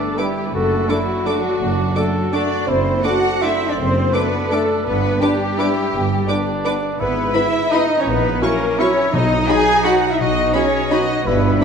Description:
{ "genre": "classical", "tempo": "168 BPM", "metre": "3/4", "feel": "uneven beats, rubato", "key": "G major, B major from 7.0 s", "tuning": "A4 = 440 Hz", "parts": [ { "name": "dark cor anglais", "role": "second line", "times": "0.0-11.6 s", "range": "C4 to A4", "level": "-24 LUFS", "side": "right 3 dB", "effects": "none" }, { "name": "small flute group", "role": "second line", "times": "0.0-11.6 s", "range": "F#4 to G#5", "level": "-25 LUFS", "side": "left 4 dB", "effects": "none" }, { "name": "warm studio violin section", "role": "second line", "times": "0.0-11.6 s", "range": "F#4 to G#5", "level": "-22 LUFS", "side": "left 2 dB", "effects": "none" }, { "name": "concert harp", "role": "arpeggios", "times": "0.0-11.6 s", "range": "F#2 to D6", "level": "-27 LUFS", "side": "left 7 dB", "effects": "none" }, { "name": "rich studio cello section", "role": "bass", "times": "0.0-11.6 s", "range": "F#3 to G#4", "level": "-23 LUFS", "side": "right 2 dB", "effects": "none" }, { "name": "rich studio violin section", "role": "melody", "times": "0.2-11.6 s", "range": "B5 to D6", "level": "-30 LUFS", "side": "left 2 dB", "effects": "none" }, { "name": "warm studio viola section", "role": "accompaniment", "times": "0.2-11.6 s", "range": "B3 to B4", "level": "-25 LUFS", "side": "right 1 dB", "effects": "none" }, { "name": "warm French horn section", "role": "sustained chords", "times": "0.2-11.6 s", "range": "F#3 to E4", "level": "-26 LUFS", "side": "left 3 dB", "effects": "none" }, { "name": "rich studio double bass section", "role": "bass", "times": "0.5-11.6 s", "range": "F#1 to B1", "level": "-24 LUFS", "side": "right 4 dB", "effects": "none" }, { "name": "timpani", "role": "percussion", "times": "9.1-9.6 s", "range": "B2", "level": "-25 LUFS", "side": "equal", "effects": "none" } ], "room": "wet scoring stage reverb, RT60 1.6 s", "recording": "none", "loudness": "-15 LUFS", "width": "side -6 dB against mid", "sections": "0.0-11.6 A section", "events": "none", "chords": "0.0 G; 0.5 D/F#; 2.7 D7/F#; 4.9 G; 7.0 E/G#; 8.1 F#7/A#; 9.1 B" }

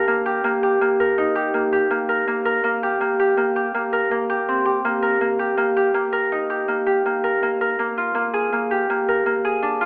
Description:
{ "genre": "contemporary instrumental, contemporary", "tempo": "163 BPM", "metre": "7/4", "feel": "straight", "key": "Eb major", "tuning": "A4 = 439 Hz", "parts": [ { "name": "Celtic harp", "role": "solo", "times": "0.0-9.9 s", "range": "Bb3 to Bb4", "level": "-18 LUFS", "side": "equal", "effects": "none" } ], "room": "wet recital hall reverb, RT60 1.6 s", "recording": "telephone sound", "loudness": "-18 LUFS", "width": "side -35 dB against mid", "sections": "0.0-7.8 A section; 7.8-9.9 B section", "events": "none", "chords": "0.0 Ebmaj7; 2.6 Gmadd11/Bb; 7.8 Bb7(no3)" }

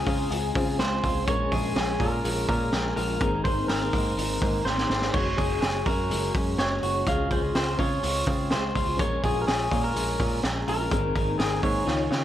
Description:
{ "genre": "jangly indie pop", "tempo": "124 BPM", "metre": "4/4", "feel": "straight", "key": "Db major", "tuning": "A4 = 440 Hz", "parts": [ { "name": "electric guitar through a small old amp", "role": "melody", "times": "0.0-12.2 s", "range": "Ab4 to F5", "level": "-29 LUFS", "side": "equal", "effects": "analog delay" }, { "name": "glockenspiel with soft plastic mallets", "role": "second line", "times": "0.0-12.2 s", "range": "Ab5 to F6", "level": "-36 LUFS", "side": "right 5 dB", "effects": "analog delay" }, { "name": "fingerpicked twelve-string acoustic guitar", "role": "accompaniment", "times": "0.0-12.2 s", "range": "Ab2 to Ab4", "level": "-36 LUFS", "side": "right 5 dB", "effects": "analog chorus, analog delay" }, { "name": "reed electric piano", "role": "accompaniment", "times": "0.0-12.2 s", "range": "C4 to Db5", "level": "-36 LUFS", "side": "left 5 dB", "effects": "fast tremolo, analog delay" }, { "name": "twelve-string electric guitar", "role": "arpeggios", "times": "0.0-12.2 s", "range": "Eb3 to Gb4", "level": "-33 LUFS", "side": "left 5 dB", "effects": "analog delay" }, { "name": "picked electric bass", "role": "bass", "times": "0.0-12.2 s", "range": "Gb1 to Db3", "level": "-30 LUFS", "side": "equal", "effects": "none" }, { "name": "raw garage drum kit", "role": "drums", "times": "0.1-12.2 s", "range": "crash cymbal, hi-hat, kick drum, snare drum", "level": "-28 LUFS", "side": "equal", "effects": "none" } ], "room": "light reverb, small room ambience", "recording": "echo-heavy mix", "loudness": "-23 LUFS", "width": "side -11 dB against mid", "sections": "0.0-12.2 A section", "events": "drum fill 4.7-5.1, 11.9-12.2", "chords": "0.0 Dbmaj7; 1.3 Bbm7; 3.2 Abadd9; 5.1 Gbsus2; 7.1 Dbmaj7; 9.0 Bbm7; 10.9 Abadd9" }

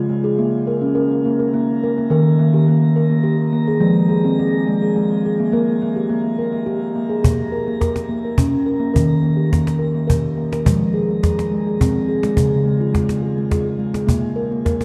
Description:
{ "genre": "world meditative, meditative tuned percussion", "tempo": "105 BPM", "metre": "3/4", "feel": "straight", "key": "Bb dorian", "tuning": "A4 = 440 Hz", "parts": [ { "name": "steel tongue drum", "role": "arpeggios", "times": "0.0-14.8 s", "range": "Db3 to Bb4", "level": "-19 LUFS", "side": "equal", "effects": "diffuse ambient delay, shimmer reverb" }, { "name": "cajon", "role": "percussion", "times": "7.2-14.8 s", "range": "none", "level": "-22 LUFS", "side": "equal", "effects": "none" } ], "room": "wet concert hall reverb, RT60 1.8 s, small room reverb", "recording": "dark, warm production", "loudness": "-18 LUFS", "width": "mono", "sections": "0.0-7.2 A section; 7.2-14.8 B section", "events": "none", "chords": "0.4 N.C.; 2.1 Eb; 3.8 Fm; 5.5 Gm/Bb; 7.2 Bbm; 8.9 Eb5; 10.7 Fm; 12.4 Db5; 14.1 N.C." }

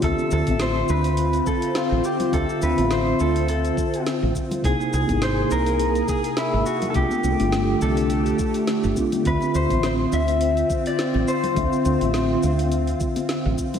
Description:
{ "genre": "sunset chillout", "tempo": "104 BPM", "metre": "4/4", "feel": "swing 56% on 16ths", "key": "unclear", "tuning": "A4 = 438 Hz", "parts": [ { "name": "electric guitar at the edge of break-up", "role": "melody", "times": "0.0-12.4 s", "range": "E4 to E5", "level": "-26 LUFS", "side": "left 2 dB", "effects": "ping-pong delay" }, { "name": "mellow tine electric piano", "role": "accompaniment", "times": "0.0-13.8 s", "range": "C3 to E5", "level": "-25 LUFS", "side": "equal", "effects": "medium stereo tremolo, auto-pan, ping-pong delay" }, { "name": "soft string machine", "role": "sustained chords", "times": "0.0-13.8 s", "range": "D3 to G#4", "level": "-26 LUFS", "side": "equal", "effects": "ensemble chorus" }, { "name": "woody fretless electric bass", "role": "bass", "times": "0.0-13.5 s", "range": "G1 to D2", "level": "-24 LUFS", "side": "equal", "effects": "lush chorus" }, { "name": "electronic kick drum", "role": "drums", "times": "0.0-13.7 s", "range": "none", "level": "-27 LUFS", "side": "equal", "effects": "none" }, { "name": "smooth R&B drum kit", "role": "drums", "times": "0.0-13.8 s", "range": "cabasa, hi-hat, snare drum", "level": "-32 LUFS", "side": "equal", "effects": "none" }, { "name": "congas", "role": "percussion", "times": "0.5-13.8 s", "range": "none", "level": "-34 LUFS", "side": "left 1 dB", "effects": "none" } ], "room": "wet lush hall reverb, RT60 1.8 s, digital ambience", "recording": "dreamy mix soaked in reverb", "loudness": "-19 LUFS", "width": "side -8 dB against mid", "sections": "0.0-13.8 A section", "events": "none", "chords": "0.0 Dm9; 4.6 C7alt; 6.9 F69; 9.3 Dm9" }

